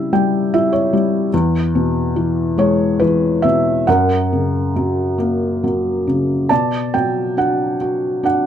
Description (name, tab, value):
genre	classical, lyrical solo piano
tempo	67-78 BPM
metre	3/4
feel	rubato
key	B minor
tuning	A4 = 441 Hz
part	felt-muted upright piano	solo	0.0-8.5 s	E2 to A5	-15 LUFS	equal	none
room	moderate studio ambience, RT60 0.5 s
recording	dark, warm production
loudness	-15 LUFS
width	side -9 dB against mid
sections	0.0-8.5 A section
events	felt piano fill 0.0-1.3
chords	0.0 C#dim; 1.3 E; 3.9 F#; 6.5 Bm